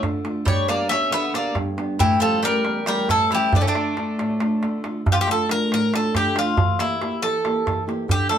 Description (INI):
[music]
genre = greek folk, Greek bouzouki band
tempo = 275 BPM (eighths)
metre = 7/8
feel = straight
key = D harmonic minor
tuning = A4 = 440 Hz
[part]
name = flamenco guitar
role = accompaniment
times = 0.0-8.4 s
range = E2 to G4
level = -25 LUFS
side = equal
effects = none
[part]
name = darbuka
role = percussion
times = 0.0-8.4 s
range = none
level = -24 LUFS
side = right 2 dB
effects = none
[part]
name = Greek bouzouki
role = melody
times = 0.5-8.4 s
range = C#4 to E5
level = -22 LUFS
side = left 1 dB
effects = none
[part]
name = Greek bouzouki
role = second line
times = 0.5-4.8 s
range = E3 to C#4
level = -27 LUFS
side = right 2 dB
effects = none
[sound]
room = wet small room ambience, RT60 0.5 s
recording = band playing live in one room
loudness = -19 LUFS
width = side -9 dB against mid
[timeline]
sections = 0.0-5.1 A section; 5.1-8.4 A section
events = none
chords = 0.5 G; 2.0 A7; 3.5 Dm; 6.6 Edim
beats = 0.02 0.24 | 0.46 0.68 0.90 1.12 1.34 1.56 1.78 | 2.00 2.22 2.44 2.65 2.87 3.09 3.31 | 3.53 3.75 3.97 4.18 4.40 4.62 4.84 | 5.06 5.27 5.49 5.71 5.92 6.14 6.36 | 6.58 6.79 7.01 7.22 7.44 7.66 7.87 | 8.09 8.30